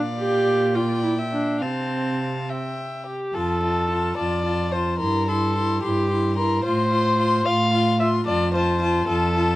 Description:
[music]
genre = quick classical-period movement for string quartet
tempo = 73 BPM (dotted quarters)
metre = 6/8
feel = rubato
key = F major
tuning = A4 = 440 Hz
[part]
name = rich violin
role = melody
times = 0.0-9.6 s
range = F5 to C6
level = -29 LUFS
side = left 4 dB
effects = none
[part]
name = warm violin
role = second line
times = 0.0-9.6 s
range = G4 to F5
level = -25 LUFS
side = left 2 dB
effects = none
[part]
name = dark cello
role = bass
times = 0.0-9.6 s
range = F2 to C3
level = -25 LUFS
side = right 2 dB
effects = none
[part]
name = warm viola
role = accompaniment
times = 0.2-9.6 s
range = C4 to G4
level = -24 LUFS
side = equal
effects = none
[sound]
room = light reverb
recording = worn, warbling old tape, cassette tape, warbly pitch drift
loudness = -20 LUFS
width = side -16 dB against mid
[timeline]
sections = 0.0-3.3 A section; 3.3-9.6 B section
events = none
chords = 0.0 Bb; 0.8 Gm/Bb; 1.6 F/C; 3.3 F; 5.0 C/G; 6.6 F/A; 8.3 F

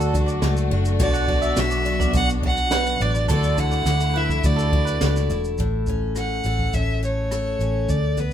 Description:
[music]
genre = acoustic pop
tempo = 105 BPM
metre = 4/4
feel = straight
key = unclear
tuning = A4 = 440 Hz
[part]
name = picked steel-string acoustic guitar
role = accompaniment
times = 0.0-8.3 s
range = A2 to A4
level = -27 LUFS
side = left 3 dB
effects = none
[part]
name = warm studio string section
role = sustained chords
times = 0.0-5.5 s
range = D3 to F#4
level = -31 LUFS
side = left 3 dB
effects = none
[part]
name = mandolin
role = arpeggios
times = 0.0-5.1 s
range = A4 to F#5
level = -31 LUFS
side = right 4 dB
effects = none
[part]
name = vintage muted fingered electric bass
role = bass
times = 0.0-8.3 s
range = E1 to D2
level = -22 LUFS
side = equal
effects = none
[part]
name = jazz brush drum kit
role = drums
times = 0.0-8.3 s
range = kick drum, rim click, shaker, snare drum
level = -26 LUFS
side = equal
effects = none
[part]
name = rich violin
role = melody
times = 1.0-8.3 s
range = B4 to F#5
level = -25 LUFS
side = right 2 dB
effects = none
[sound]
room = little or no reverb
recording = minimal, uncompressed stereo recording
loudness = -19 LUFS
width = side -10 dB against mid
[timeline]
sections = 0.0-5.6 A section; 5.6-8.3 B section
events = none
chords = 0.0 D; 1.0 Bm; 3.3 Dadd9; 5.6 A

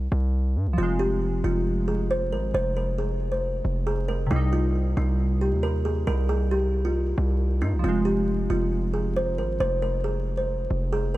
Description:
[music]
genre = hip hop, trap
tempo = 136 BPM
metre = 4/4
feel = half-time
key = F minor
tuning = A4 = 439 Hz
[part]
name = hard-hitting 808-style bass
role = bass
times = 0.0-11.2 s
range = F1 to G2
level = -25 LUFS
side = equal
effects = none
[part]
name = glassy digital keys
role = accompaniment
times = 0.7-11.2 s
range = C3 to Eb4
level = -30 LUFS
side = right 2 dB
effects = chorus
[part]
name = kalimba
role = melody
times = 0.8-11.2 s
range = Eb4 to C5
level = -27 LUFS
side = equal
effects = none
[sound]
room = small room reverb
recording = vinyl crackle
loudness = -22 LUFS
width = side -16 dB against mid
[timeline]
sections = 0.0-11.2 A section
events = break 0.0-0.8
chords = 0.0 C5; 0.8 Fm; 4.3 Cm; 7.8 Fm

